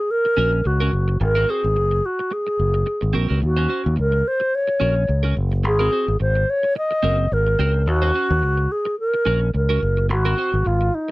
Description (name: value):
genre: disco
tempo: 108 BPM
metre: 4/4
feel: swing 56% on 16ths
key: Eb dorian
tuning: A4 = 440 Hz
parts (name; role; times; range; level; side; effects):
- bright wooden-headed alto flute; melody; 0.0-11.1 s; Eb4 to Eb5; -20 LUFS; equal; none
- clean electric guitar; accompaniment; 0.3-11.1 s; C4 to C5; -27 LUFS; right 5 dB; wide subtle chorus
- fingered electric bass; bass; 0.4-10.9 s; Gb1 to Eb2; -19 LUFS; equal; none
room: little or no reverb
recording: dry, close 1970s-style studio recording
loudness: -17 LUFS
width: side -19 dB against mid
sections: 0.0-11.1 A section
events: none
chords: 0.0 Ebm7 (rootless); 1.2 Ab9; 3.4 Ebm7; 5.6 Ab9; 7.9 Ebm7; 10.1 Ab9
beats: 0.10 0.65 | 1.20 1.76 2.31 2.87 | 3.42 3.98 4.53 5.09 | 5.64 6.20 6.75 7.31 | 7.86 8.42 8.98 9.53 | 10.09 10.65